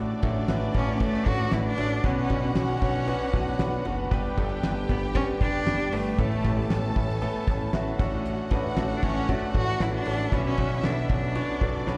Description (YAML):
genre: piano-driven pop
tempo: 116 BPM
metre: 4/4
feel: straight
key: unclear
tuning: A4 = 440 Hz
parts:
  - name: warm studio violin section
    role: second line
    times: 0.0-12.0 s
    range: D4 to A5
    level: -38 LUFS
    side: equal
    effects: slapback echo, delay
  - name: warm concert grand piano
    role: accompaniment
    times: 0.0-12.0 s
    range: G2 to C#5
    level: -32 LUFS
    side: equal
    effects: slapback echo
  - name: plucky analog bass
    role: bass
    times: 0.0-12.0 s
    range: F#1 to B1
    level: -32 LUFS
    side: equal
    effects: none
  - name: damped 70s drum kit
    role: drums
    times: 0.2-12.0 s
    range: crash cymbal, hi-hat, kick drum, ride cymbal, snare drum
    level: -30 LUFS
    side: equal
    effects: none
  - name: clear cello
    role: melody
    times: 0.8-12.0 s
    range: A3 to F#4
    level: -33 LUFS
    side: equal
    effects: slapback echo
room: light reverb, small room ambience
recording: live gig heard through the venue's PA, recital hall reverb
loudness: -26 LUFS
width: mono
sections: 0.0-12.0 A section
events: none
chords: 0.0 Dmaj7/A; 2.0 Bmadd9; 4.1 G; 6.2 Aadd9; 8.0 Dmaj7/A; 10.3 Bmadd9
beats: 0.49 1.01 1.53 | 2.05 2.56 3.08 3.60 | 4.12 4.63 5.15 5.67 | 6.18 6.70 7.22 7.74 | 8.25 8.77 9.29 9.80 | 10.32 10.84 11.36 11.87